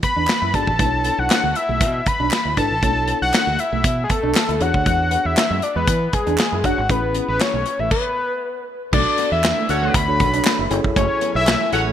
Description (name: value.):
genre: early-eighties boogie funk.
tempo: 118 BPM.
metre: 4/4.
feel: straight.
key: B dorian.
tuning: A4 = 442 Hz.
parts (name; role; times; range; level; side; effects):
fat analog lead; melody; 0.0-11.8 s; G#4 to B5; -20 LUFS; left 2 dB; none.
electric guitar at the edge of break-up; riff; 0.0-11.9 s; G#3 to E4; -29 LUFS; right 10 dB; wide subtle chorus.
modern studio drum kit; drums; 0.0-11.9 s; crash cymbal, handclaps, hi-hat, kick drum, snare drum; -21 LUFS; equal; gated reverb.
fingered electric bass; bass; 0.2-11.9 s; E1 to E3; -24 LUFS; right 1 dB; none.
group handclap; percussion; 0.3-11.6 s; none; -30 LUFS; right 5 dB; none.
mellow tine electric piano; accompaniment; 0.5-11.9 s; C#4 to D5; -26 LUFS; left 2 dB; medium stereo tremolo.
lush unison pad; sustained chords; 8.9-11.9 s; F#3 to G#5; -32 LUFS; right 1 dB; none.
clear horn section; second line; 9.7-11.9 s; C#4 to C#5; -27 LUFS; right 2 dB; ping-pong delay.
room: light reverb, small room ambience.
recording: bright 1980s-style digital production.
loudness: -16 LUFS.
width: side -10 dB against mid.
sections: 0.0-8.9 A section; 8.9-11.9 B section.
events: stop 7.9-8.9.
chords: 0.0 E9; 0.8 Bm11; 4.6 E13; 6.9 Amaj9; 8.9 Bm9; 10.7 F#m9.